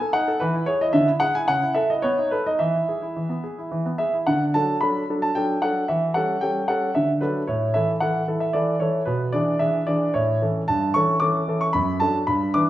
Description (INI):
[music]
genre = classical-period piano sonatina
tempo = 112 BPM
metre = 3/4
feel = straight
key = E major, D major from 4.3 s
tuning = A4 = 440 Hz
[part]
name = clear concert grand piano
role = solo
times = 0.0-12.7 s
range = F#2 to D6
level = -20 LUFS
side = equal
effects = none
[sound]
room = moderate recital hall reverb, RT60 1.6 s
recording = recorded in a church or concert hall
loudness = -20 LUFS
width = side -14 dB against mid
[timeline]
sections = 0.0-4.3 A section; 4.3-12.7 B section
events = none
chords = 0.4 E; 0.9 E7/D; 1.5 A/C#; 2.0 B7; 2.6 E; 4.3 D; 5.9 A7/E; 7.0 D; 7.5 A5; 9.1 E7/B; 10.1 A; 10.7 A7/G; 11.7 D/F#